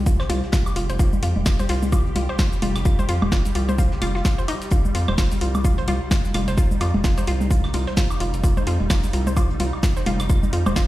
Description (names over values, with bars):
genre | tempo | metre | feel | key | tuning
minimal techno | 129 BPM | 4/4 | swing 58% on 16ths | unclear | A4 = 440 Hz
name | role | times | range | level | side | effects
rubbery square bass | bass | 0.0-10.9 s | Eb1 to F2 | -24 LUFS | equal | sidechain pumping
swarming drone | texture | 0.0-10.9 s | G3 to G4 | -33 LUFS | right 1 dB | built-in reverb, sidechain pumping
hollow square pluck | riff | 0.1-10.8 s | Eb4 to C5 | -28 LUFS | equal | chorus, sidechain pumping, dub echo
electronic kick drum | drums | 0.1-10.9 s | none | -20 LUFS | equal | none
house drum kit | drums | 0.1-10.9 s | hi-hat, shaker, snare drum | -29 LUFS | equal | none
soft brush drum kit | drums | 0.1-10.9 s | hi-hat, snare drum | -40 LUFS | left 2 dB | none
electronic claves, woodblock, toms and congas | percussion | 0.2-10.7 s | none | -27 LUFS | left 1 dB | dub echo
room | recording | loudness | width
little or no reverb | played on a big sound system in a bare room, stone room reverb | -18 LUFS | side -16 dB against mid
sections
0.0-10.9 A section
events
none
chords
0.0 F5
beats
0.06 0.53 | 0.99 1.46 1.93 2.39 | 2.85 3.32 3.79 4.25 | 4.71 5.18 5.64 6.11 | 6.58 7.04 7.51 7.97 | 8.44 8.90 9.37 9.83 | 10.30 10.76